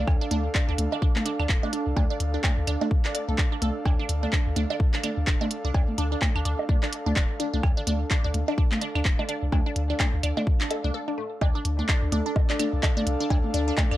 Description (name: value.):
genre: minimal techno.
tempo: 127 BPM.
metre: 4/4.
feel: swing 58% on 16ths.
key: D minor.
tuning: A4 = 440 Hz.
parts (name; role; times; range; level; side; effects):
resonant blip pluck; riff; 0.0-14.0 s; A3 to D5; -32 LUFS; right 2 dB; phaser, sidechain pumping, analog delay.
punchy sub bass; bass; 0.0-14.0 s; D1 to D2; -27 LUFS; equal; sidechain pumping.
airy breathy pad; texture; 0.0-14.0 s; D4 to F5; -34 LUFS; equal; chorus, sidechain pumping.
electronic kick drum; drums; 0.1-13.9 s; none; -24 LUFS; equal; none.
electronic cowbell, claves, toms and bongos; percussion; 0.1-14.0 s; none; -32 LUFS; right 1 dB; analog delay.
minimal click drum kit; drums; 0.3-13.9 s; handclaps, hi-hat; -30 LUFS; equal; none.
room: light reverb.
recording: dry, gritty hardware recording.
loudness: -23 LUFS.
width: side -14 dB against mid.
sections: 0.0-11.4 A section; 11.4-14.0 B section.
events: break 10.9-11.4; drop 11.4-14.0.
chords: 0.0 Dm.